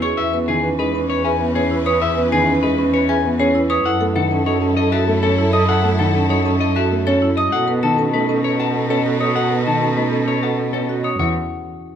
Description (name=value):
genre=classical, minimalist pattern music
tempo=196 BPM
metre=6/4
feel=straight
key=unclear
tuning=A4 = 441 Hz
part: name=electric guitar at the edge of break-up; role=melody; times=0.0-11.3 s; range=G#4 to A5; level=-23 LUFS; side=left 8 dB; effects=none
part: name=marimba with medium hard mallets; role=arpeggios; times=0.0-11.3 s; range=C#4 to C#5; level=-22 LUFS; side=right 2 dB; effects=none
part: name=xylophone with rubber mallets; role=arpeggios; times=0.0-11.3 s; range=D#5 to D#6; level=-25 LUFS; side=left 1 dB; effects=none
part: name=rich cello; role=bass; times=0.0-11.3 s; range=E2 to B2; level=-22 LUFS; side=right 2 dB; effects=none
part: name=clear French horn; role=second line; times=0.2-11.0 s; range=A4 to B4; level=-25 LUFS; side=right 3 dB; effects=none
part: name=clear studio string section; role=sustained chords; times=0.2-11.0 s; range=C#4 to B4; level=-28 LUFS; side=left 3 dB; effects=none
part: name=dark concert grand piano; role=accompaniment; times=0.3-11.3 s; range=D#3 to C#4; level=-24 LUFS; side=left 1 dB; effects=none
room=moderate recital hall reverb, RT60 1.8 s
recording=close, detailed microphones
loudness=-15 LUFS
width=side -9 dB against mid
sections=0.0-11.2 A section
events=none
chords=0.2 C#m7/E; 3.9 F#m7; 7.5 B7; 11.2 Esus2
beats=| 0.18 0.48 0.79 1.10 1.40 1.71 | 2.02 2.32 2.63 2.93 3.24 3.54 | 3.85 4.16 4.46 4.77 5.08 5.38 | 5.69 5.99 6.30 6.61 6.91 7.22 | 7.53 7.83 8.14 8.44 8.75 9.06 | 9.36 9.67 9.97 10.28 10.59 10.89 | 11.20